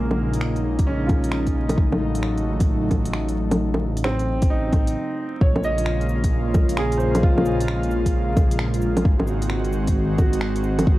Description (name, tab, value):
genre	future garage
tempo	132 BPM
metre	4/4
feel	swing 66% on 16ths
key	Bb minor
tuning	A4 = 440 Hz
part	bright upright piano	accompaniment	0.0-11.0 s	Bb3 to Eb5	-28 LUFS	right 2 dB	sidechain pumping, analog delay
part	airy breathy pad	sustained chords	0.0-11.0 s	Db3 to Gb4	-25 LUFS	equal	chorus, sidechain pumping
part	dark detuned saw bass	bass	0.0-11.0 s	Ab1 to Bb1	-25 LUFS	equal	sidechain pumping
part	deep house drum kit	drums	0.1-10.9 s	bongos, cabasa, finger snaps, hi-hat	-26 LUFS	equal	small room reverb
part	electronic kick drum	drums	0.8-11.0 s	none	-19 LUFS	equal	small room reverb
room	little or no reverb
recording	dry, gritty hardware recording, vinyl crackle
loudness	-19 LUFS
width	side -16 dB against mid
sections	0.0-5.4 A section; 5.4-11.0 B section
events	stop 5.0-5.4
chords	0.0 Bbm7; 1.8 F7b9b13/A (rootless); 5.4 Bbm7; 9.1 Ab7